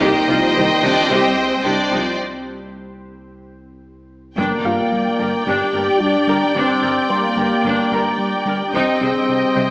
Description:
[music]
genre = cinematic, hybrid orchestral and electronic film score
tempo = 110 BPM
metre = 4/4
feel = straight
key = C minor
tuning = A4 = 440 Hz
[part]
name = mellow duduk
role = melody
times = 0.0-2.0 s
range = C4 to Eb4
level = -22 LUFS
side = equal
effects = none
[part]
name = rich symphonic violin section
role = melody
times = 0.0-2.2 s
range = C5 to Eb5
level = -24 LUFS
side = equal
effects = none
[part]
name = warm symphonic violin section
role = second line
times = 0.0-9.7 s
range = Eb5 to G5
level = -22 LUFS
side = equal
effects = none
[part]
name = clear symphonic viola section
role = accompaniment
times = 0.0-9.7 s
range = D4 to Eb5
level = -21 LUFS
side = equal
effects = none
[part]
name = glassy FM pad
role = sustained chords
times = 0.0-9.7 s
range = Eb3 to G5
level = -27 LUFS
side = equal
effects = ensemble chorus, built-in reverb
[part]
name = mellow French horn section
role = sustained chords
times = 0.0-9.7 s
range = Eb3 to G4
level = -20 LUFS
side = left 1 dB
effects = none
[part]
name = tight sequenced synth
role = arpeggios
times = 0.0-9.7 s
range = C3 to G4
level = -30 LUFS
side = equal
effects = none
[part]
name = round analog bass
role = riff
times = 0.0-9.7 s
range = C2 to G3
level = -28 LUFS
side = equal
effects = none
[part]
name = mellow tuba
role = bass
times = 0.0-2.0 s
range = C2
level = -26 LUFS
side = right 1 dB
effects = none
[part]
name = punchy sub bass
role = bass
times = 0.0-4.4 s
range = C2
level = -43 LUFS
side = equal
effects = none
[part]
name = rich symphonic double bass section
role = bass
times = 0.0-9.6 s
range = G1 to C2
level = -32 LUFS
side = equal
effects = none
[part]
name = warm symphonic cello section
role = bass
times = 0.0-9.6 s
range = G2 to C3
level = -28 LUFS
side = equal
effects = none
[part]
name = felt-muted upright piano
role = texture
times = 0.0-9.7 s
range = F4 to C6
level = -27 LUFS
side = equal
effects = tape echo
[part]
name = impact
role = sound effects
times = 4.4-6.6 s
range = none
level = -32 LUFS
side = equal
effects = none
[sound]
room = wet scoring stage reverb, RT60 1.5 s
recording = small speaker sound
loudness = -15 LUFS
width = side -22 dB against mid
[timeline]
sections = 0.0-4.4 A section; 4.4-9.7 B section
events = break 2.2-4.4; impact 4.4-6.6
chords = 0.0 Cm; 4.4 Gm; 8.7 Cm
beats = | 0.01 0.56 1.10 1.65 | 2.19 2.74 3.28 3.83 | 4.38 4.92 5.47 6.01 | 6.56 7.10 7.65 8.19 | 8.74 9.28

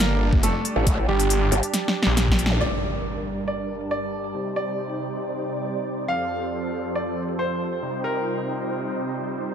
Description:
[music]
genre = heavy wobble dubstep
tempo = 138 BPM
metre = 4/4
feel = half-time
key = G minor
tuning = A4 = 440 Hz
[part]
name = clear grand piano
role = melody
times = 0.0-9.5 s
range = G3 to F5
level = -29 LUFS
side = right 2 dB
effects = ping-pong delay
[part]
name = supersaw chords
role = sustained chords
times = 0.0-9.5 s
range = F2 to A5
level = -30 LUFS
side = right 2 dB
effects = sidechain pumping, low-pass filter
[part]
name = snarling distorted saw bass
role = bass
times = 0.0-2.6 s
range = G1 to Bb1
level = -22 LUFS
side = equal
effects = distortion, overdrive
[part]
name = big-room dance drum kit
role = drums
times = 0.0-2.7 s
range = crash cymbal, hi-hat, snare drum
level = -24 LUFS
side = equal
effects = overdrive, low-pass filter on hats, studio ambience, low-pass filter on snare, low-pass filter on cymbals
[part]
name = ethereal airy pad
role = texture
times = 2.0-9.5 s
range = C4 to A5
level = -32 LUFS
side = equal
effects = ensemble chorus, built-in reverb, sidechain pumping
[part]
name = electronic kick drum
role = drums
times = 0.3-2.4 s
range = none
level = -21 LUFS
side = equal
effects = studio ambience
[part]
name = growl bass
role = bass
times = 0.8-1.6 s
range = G1 to A1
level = -22 LUFS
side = equal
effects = chorus, overdrive
[part]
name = zap and impact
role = sound effects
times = 2.5-4.3 s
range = none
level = -30 LUFS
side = equal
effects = none
[sound]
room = light reverb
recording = none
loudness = -22 LUFS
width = side -8 dB against mid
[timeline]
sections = 0.0-2.6 A section; 2.6-9.5 B section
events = drop 0.0-2.6; drum fill 1.7-2.6; band accent 2.5; impact 2.6-4.3; filter sweep on supersaw synth 2.6-9.5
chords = 0.0 Gmadd9; 2.6 Gm; 4.3 Cm; 6.1 F; 7.8 Cm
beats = 0.00 0.43 | 0.87 1.30 1.74 2.17 | 2.61 3.04 3.48 3.91 | 4.35 4.78 5.21 5.65 | 6.08 6.52 6.96 7.39 | 7.82 8.26 8.69 9.13

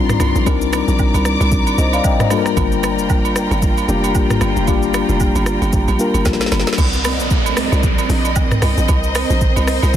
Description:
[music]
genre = amapiano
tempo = 114 BPM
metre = 4/4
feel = swing 58% on 16ths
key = C minor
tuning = A4 = 440 Hz
[part]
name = mellow tine electric piano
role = accompaniment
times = 0.0-6.8 s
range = G3 to G5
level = -18 LUFS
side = moving between left 9 dB and right 1 dB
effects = auto-pan
[part]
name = warm studio string section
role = sustained chords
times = 0.0-10.0 s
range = Eb3 to D6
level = -22 LUFS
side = equal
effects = sidechain pumping
[part]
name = tight log drum bass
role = bass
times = 0.0-10.0 s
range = F1 to C2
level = -19 LUFS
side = right 1 dB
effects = none
[part]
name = afro-pop drum kit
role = drums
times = 0.1-10.0 s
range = crash cymbal, hi-hat, kick drum, rim click, shaker, snare drum, toms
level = -18 LUFS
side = right 1 dB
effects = none
[part]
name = agogo bells and woodblock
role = percussion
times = 0.2-9.9 s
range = none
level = -26 LUFS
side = right 14 dB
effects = none
[part]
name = downlifter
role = sound effects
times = 6.8-10.0 s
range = none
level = -24 LUFS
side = right 2 dB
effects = none
[sound]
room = digital ambience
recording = dense, heavily limited modern master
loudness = -14 LUFS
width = side -10 dB against mid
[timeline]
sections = 0.0-6.8 A section; 6.8-10.0 B section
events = drum fill 6.3-6.8; drop 6.8-10.0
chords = 0.0 Cm9; 2.3 Gm7; 6.8 Cm9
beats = | 0.47 0.99 1.52 2.04 | 2.57 3.10 3.62 4.15 | 4.68 5.20 5.73 6.25 | 6.78 7.31 7.83 8.36 | 8.89 9.41 9.94

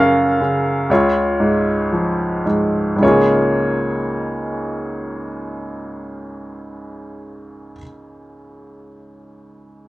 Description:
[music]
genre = classical, lyrical solo piano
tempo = 52-66 BPM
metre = 4/4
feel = rubato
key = Db major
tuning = A4 = 440 Hz
[part]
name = bright upright piano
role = solo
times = 0.0-9.9 s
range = Db2 to Gb5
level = -17 LUFS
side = equal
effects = none
[sound]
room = wet studio reverb, RT60 0.5 s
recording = worn, warbling old tape, cassette tape, warbly pitch drift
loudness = -16 LUFS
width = side -17 dB against mid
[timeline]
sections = 0.0-3.0 A section; 3.0-7.5 B section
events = slowing down 0.0-3.0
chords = 0.0 Gbmaj7; 0.9 Db; 3.0 Db6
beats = 0.90 1.92 | 3.02 4.15 5.25 6.38

